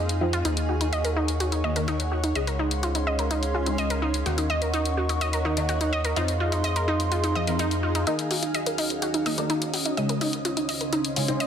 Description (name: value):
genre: melodic techno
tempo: 126 BPM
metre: 4/4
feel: straight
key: Eb dorian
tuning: A4 = 440 Hz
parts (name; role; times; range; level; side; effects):
- dark analog pad; sustained chords; 0.0-11.5 s; Db3 to Db6; -33 LUFS; right 1 dB; chorus
- wide unison pluck; arpeggios; 0.0-11.5 s; Eb4 to Eb5; -28 LUFS; right 1 dB; dub echo
- round analog bass; bass; 0.0-8.0 s; Db2 to F2; -28 LUFS; equal; none
- granular cloud pad; texture; 0.0-11.5 s; Db4 to C6; -32 LUFS; right 1 dB; built-in reverb
- electronic hi-hat; drums; 0.1-11.5 s; none; -31 LUFS; left 3 dB; studio reverb
- filtered dub chord stab; stabs; 0.2-11.5 s; Db3 to F4; -31 LUFS; left 1 dB; phaser, lush chorus, dub echo
- swell; sound effects; 7.5-8.1 s; none; -35 LUFS; equal; none
room: moderate digital room reverb, RT60 1.1 s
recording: dense, heavily limited modern master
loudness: -23 LUFS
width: side -8 dB against mid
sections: 0.0-8.1 A section; 8.1-11.5 B section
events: swell 7.5-8.1; build-up 8.1-11.5; filter sweep on analog synth pad 8.1-11.5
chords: 0.5 Ebm7; 2.4 Dbmaj7; 4.3 Ebm7; 6.2 Fm7; 8.1 Ebm7; 10.0 Dbmaj7